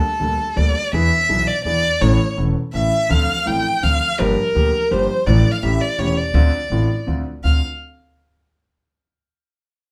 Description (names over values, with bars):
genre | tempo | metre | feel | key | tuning
tango | 166 BPM | 3/4 | rubato | D minor | A4 = 440 Hz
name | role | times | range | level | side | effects
dark violin | second line | 0.0-7.6 s | A4 to G5 | -22 LUFS | equal | none
warm concert grand piano | accompaniment | 0.2-7.6 s | E1 to A4 | -24 LUFS | equal | none
upright bass | bass | 0.2-7.6 s | E1 to E2 | -22 LUFS | equal | none
room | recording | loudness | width
wet studio reverb, RT60 0.6 s | band playing live in one room | -18 LUFS | mono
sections
0.0-7.4 A section; 7.4-8.5 B section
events
violin solo 0.0-7.4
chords
0.0 Gmadd9/D; 0.9 E7; 2.0 A; 3.1 Dm7; 4.2 Gm7; 5.3 Dm/A; 5.6 A7; 6.3 Dm7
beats
0.21 0.57 | 0.93 1.29 1.65 | 2.01 2.37 2.74 | 3.11 3.47 3.83 | 4.19 4.55 4.91 | 5.27 5.63 5.99 | 6.35 6.71 7.07 | 7.44